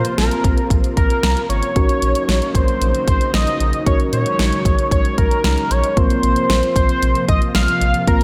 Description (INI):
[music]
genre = synth-pop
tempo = 114 BPM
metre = 4/4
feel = straight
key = Bb minor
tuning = A4 = 440 Hz
[part]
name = octave-doubled lead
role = melody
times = 0.0-8.2 s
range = Bb4 to F5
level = -22 LUFS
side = equal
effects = chorus
[part]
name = muted felt-like synth keys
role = accompaniment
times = 0.0-8.2 s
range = Bb3 to Bb4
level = -27 LUFS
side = equal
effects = chorus
[part]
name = string machine, cellos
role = sustained chords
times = 0.0-8.2 s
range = C3 to F4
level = -28 LUFS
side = equal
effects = ensemble chorus
[part]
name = round analog bass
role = bass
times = 0.0-8.2 s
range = Ab1 to Bb2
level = -22 LUFS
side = equal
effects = none
[part]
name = pop drum kit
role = drums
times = 0.0-8.2 s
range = hi-hat, kick drum, snare drum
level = -21 LUFS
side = equal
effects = none
[sound]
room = moderate lush hall reverb, RT60 1.7 s, digital ambience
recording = big arena sound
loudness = -17 LUFS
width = mono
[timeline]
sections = 0.0-8.2 A section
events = none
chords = 0.0 Bbsus2; 1.8 Ebm7/Bb; 6.0 Bbsus2